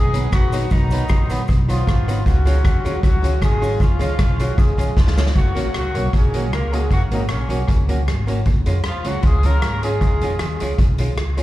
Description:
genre	ska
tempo	155 BPM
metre	4/4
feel	straight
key	F# major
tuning	A4 = 444 Hz
part	warm horn section	melody	0.0-10.6 s	C#3 to A#4	-25 LUFS	left 1 dB	analog delay, slapback echo
part	upright bass	bass	0.0-11.4 s	F#1 to E#2	-20 LUFS	equal	none
part	archtop guitar, miked and amplified	accompaniment	0.1-11.4 s	F#3 to F#4	-28 LUFS	right 2 dB	analog delay, slapback echo
part	street-band drum kit	drums	0.1-11.4 s	hi-hat, kick drum, rim click, snare drum	-19 LUFS	equal	none
part	cabasa	percussion	0.1-5.3 s	none	-48 LUFS	left 2 dB	none
room	little or no reverb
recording	live gig heard through the venue's PA, club reverb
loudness	-16 LUFS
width	side -16 dB against mid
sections	0.0-5.4 A section; 5.4-11.4 B section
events	drum fill 5.0-5.4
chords	0.0 B; 2.3 C#; 5.4 F#; 8.5 C#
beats	0.32 | 0.71 1.09 1.48 1.87 | 2.25 2.64 3.03 3.42 | 3.80 4.19 4.58 4.97 | 5.35 5.74 6.13 6.52 | 6.90 7.29 7.68 8.07 | 8.46 8.84 9.23 9.62 | 10.01 10.39 10.78 11.17

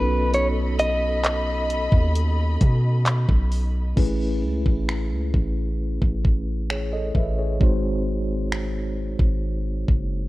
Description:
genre	contemporary R&B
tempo	66 BPM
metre	4/4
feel	straight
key	unclear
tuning	A4 = 440 Hz
part	direct-recorded clean electric guitar	melody	0.0-2.1 s	B4 to D#5	-24 LUFS	equal	tape echo
part	mellow tine electric piano	accompaniment	0.0-10.3 s	G#3 to E5	-29 LUFS	equal	medium stereo tremolo
part	warm studio string section	sustained chords	0.0-3.9 s	A4 to B5	-32 LUFS	left 2 dB	none
part	long sustained 808-style bass	bass	0.0-10.3 s	F#1 to B2	-24 LUFS	equal	transformer saturation
part	trap drum kit	drums	0.3-10.1 s	crash cymbal, finger snaps, handclaps, hi-hat, kick drum	-21 LUFS	equal	none
room	little or no reverb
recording	worn, warbling old tape, cassette tape, warbly pitch drift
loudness	-20 LUFS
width	side -18 dB against mid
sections	0.0-4.0 A section; 4.0-10.3 B section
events	break 4.0-10.3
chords	0.0 B7; 4.0 Amaj7; 7.6 G#7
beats	| 0.34 1.25 2.15 3.06 | 3.97 4.88 5.79 6.70 | 7.61 8.52 9.43

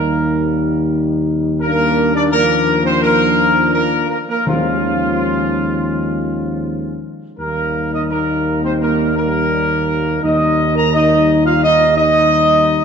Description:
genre	classical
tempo	85 BPM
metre	4/4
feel	straight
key	Eb major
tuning	A4 = 440 Hz
part	dark trumpet section	melody	0.0-12.8 s	F4 to Bb5	-16 LUFS	equal	none
part	mellow French horn section	sustained chords	0.0-12.8 s	F3 to Eb4	-21 LUFS	left 5 dB	none
part	warm trombone section	sustained chords	0.0-12.8 s	F3 to Bb4	-21 LUFS	right 2 dB	none
part	mellow tuba	bass	0.0-12.8 s	Eb2	-20 LUFS	right 3 dB	none
part	timpani	percussion	4.5-5.5 s	Eb3	-24 LUFS	equal	none
room	wet concert hall reverb, RT60 1.9 s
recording	dark, warm production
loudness	-13 LUFS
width	side -6 dB against mid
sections	0.0-12.8 A section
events	none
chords	0.0 Eb; 1.6 Bb/Eb; 4.5 Dbadd9/Eb; 7.4 Eb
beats	0.23 0.93 | 1.62 2.32 3.03 3.74 | 4.47 5.20 5.93 6.66 | 7.39 8.11 8.82 9.53 | 10.24 10.94 11.63 12.32

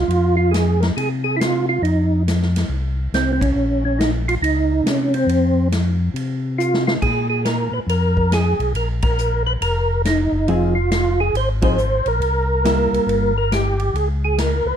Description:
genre	soul jazz organ trio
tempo	139 BPM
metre	4/4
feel	swing 65% on 8ths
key	F minor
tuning	A4 = 442 Hz
part	percussive tonewheel organ	melody	0.0-14.8 s	C4 to C5	-20 LUFS	right 2 dB	slow rotary speaker, chorus vibrato
part	mellow tonewheel organ	bass	0.0-14.7 s	F1 to C3	-20 LUFS	left 1 dB	overdrive, chorus vibrato, slow rotary speaker
part	swinging big-band drum kit	drums	0.1-14.5 s	crash cymbal, hi-hat, kick drum, ride cymbal, snare drum	-26 LUFS	left 1 dB	none
part	vintage hollow-body jazz guitar	accompaniment	10.5-13.3 s	F3 to Ab4	-22 LUFS	equal	none
room	light reverb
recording	dark, warm production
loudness	-16 LUFS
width	side -9 dB against mid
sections	0.1-14.8 A section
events	band accent 3.3, 9.0, 11.6; drum fill 6.6-7.0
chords	0.1 F5; 3.6 Bbm; 5.3 F5; 7.0 Bb5; 10.5 Fm7; 12.2 C7; 13.9 Db7(no3)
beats	| 0.10 0.53 0.96 1.39 | 1.82 2.26 2.69 3.12 | 3.55 3.98 4.42 4.85 | 5.28 5.71 6.15 6.58 | 7.01 7.45 7.88 8.31 | 8.74 9.18 9.61 10.04 | 10.48 10.91 11.35 11.78 | 12.21 12.65 13.08 13.51 | 13.95 14.38

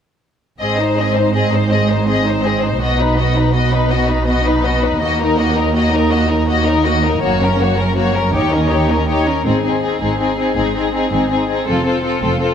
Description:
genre	cinematic, heroic adventure film score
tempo	108 BPM (dotted quarters)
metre	12/8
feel	straight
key	Ab major from 9.5 s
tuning	A4 = 441 Hz
part	rich symphonic violin section	melody	0.6-12.5 s	Ab4 to Eb5	-19 LUFS	left 4 dB	none
part	warm symphonic violin section	second line	0.6-12.5 s	D#4 to C5	-21 LUFS	left 3 dB	none
part	warm studio viola section	accompaniment	0.6-12.5 s	Bb3 to Eb4	-20 LUFS	equal	none
part	rich symphonic double bass section	bass	0.6-12.5 s	F1 to Eb2	-20 LUFS	right 2 dB	none
part	warm symphonic cello section	bass	0.6-12.5 s	Eb2 to B2	-21 LUFS	right 3 dB	none
room	moderate concert hall reverb, RT60 2.3 s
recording	none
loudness	-13 LUFS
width	side -8 dB against mid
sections	0.6-9.5 A section; 9.5-12.5 B section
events	build-up 9.5-12.5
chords	0.6 Ab; 2.8 B; 5.0 Ebm; 7.2 Gb; 8.3 Eb7; 9.5 Ab; 11.7 F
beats	| 0.60 1.16 1.71 2.27 | 2.82 3.37 3.92 4.47 | 5.02 5.57 6.12 6.67 | 7.22 7.78 8.33 8.89 | 9.45 10.01 10.57 11.12 | 11.67 12.23

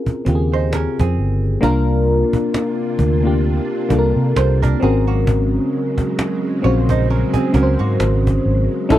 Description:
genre	R&B, neo-soul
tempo	66 BPM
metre	4/4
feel	swing 56% on 16ths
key	unclear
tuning	A4 = 440 Hz
part	mellow FM electric piano	accompaniment	0.0-9.0 s	Db3 to C5	-19 LUFS	left 2 dB	chorus
part	vintage muted fingered electric bass	bass	0.1-9.0 s	G1 to C3	-17 LUFS	equal	none
part	cajon	drums	0.1-9.0 s	none	-21 LUFS	equal	none
part	archtop guitar, miked and amplified	second line	0.5-8.9 s	Bb3 to Db5	-26 LUFS	right 10 dB	none
part	soft string machine	sustained chords	1.6-9.0 s	C3 to F4	-25 LUFS	right 4 dB	ensemble chorus
room	little or no reverb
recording	dry, close 1970s-style studio recording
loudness	-15 LUFS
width	side -13 dB against mid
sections	0.0-1.6 A section; 1.6-9.0 B section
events	none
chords	0.0 Eb9sus4; 1.6 C9sus4; 4.8 Ab9sus4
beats	0.72 | 1.63 2.54 3.45 4.36 | 5.26 6.17 7.08 7.99 | 8.90

